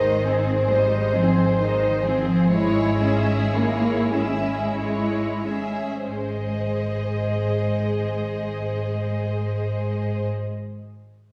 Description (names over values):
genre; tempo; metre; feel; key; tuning
classical, slow romantic movement for string orchestra; 30-46 BPM (dotted quarters); 6/8; rubato; Ab major; A4 = 441 Hz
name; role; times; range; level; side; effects
dark studio violin section; melody; 0.0-10.3 s; Fb4 to Eb5; -31 LUFS; equal; none
warm studio violin section; second line; 0.0-10.2 s; Fb4 to Fb5; -31 LUFS; equal; none
warm studio viola section; accompaniment; 0.0-10.3 s; Ab3 to Ab4; -30 LUFS; equal; none
rich studio double bass section; bass; 0.0-10.3 s; Ab1; -29 LUFS; equal; none
warm studio cello section; bass; 0.0-10.2 s; Eb3 to Bb3; -28 LUFS; equal; none
room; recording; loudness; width
wet recital hall reverb, RT60 1.4 s; recorded in a church or concert hall; -23 LUFS; mono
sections
0.0-6.1 A section; 6.1-9.5 B section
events
slowing down 0.0-6.1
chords
0.0 Ab; 2.5 Dbm/Ab; 6.1 Ab